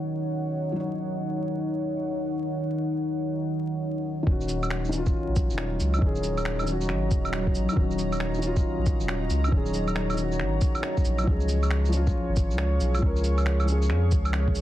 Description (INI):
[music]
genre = future garage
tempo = 137 BPM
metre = 4/4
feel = swing 64% on 16ths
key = Eb minor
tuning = A4 = 442 Hz
[part]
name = felt-muted upright piano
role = accompaniment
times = 0.0-14.6 s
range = Eb3 to Db5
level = -31 LUFS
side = left 2 dB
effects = sidechain pumping, analog delay
[part]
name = deep dark ambient pad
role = sustained chords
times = 0.0-14.6 s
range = Eb3 to Db6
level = -30 LUFS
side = right 1 dB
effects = chorus, built-in reverb, sidechain pumping
[part]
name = warm sub bass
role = bass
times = 4.3-14.6 s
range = Eb1 to F2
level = -26 LUFS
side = equal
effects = sidechain pumping
[part]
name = electronic kick drum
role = drums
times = 4.3-14.5 s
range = none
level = -25 LUFS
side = equal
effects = overdrive
[part]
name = electronic shaker, cabasa, claves and finger snaps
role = drums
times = 4.4-14.6 s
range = none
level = -34 LUFS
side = right 2 dB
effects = overdrive, low-pass filter on perc, soft clipping on snare, low-pass filter on snare, low-pass filter on room
[sound]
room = light reverb, digital ambience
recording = dense, heavily limited modern master, vinyl crackle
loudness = -23 LUFS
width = side -13 dB against mid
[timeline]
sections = 0.0-4.3 A section; 4.3-14.6 B section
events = none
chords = 0.0 Ebm7; 11.3 Db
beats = 0.32 | 0.76 1.20 1.64 2.08 | 2.51 2.95 3.39 3.83 | 4.26 4.70 5.14 5.58 | 6.02 6.46 6.89 7.33 | 7.77 8.21 8.64 9.08 | 9.52 9.96 10.40 10.84 | 11.27 11.71 12.15 12.59 | 13.02 13.46 13.90 14.34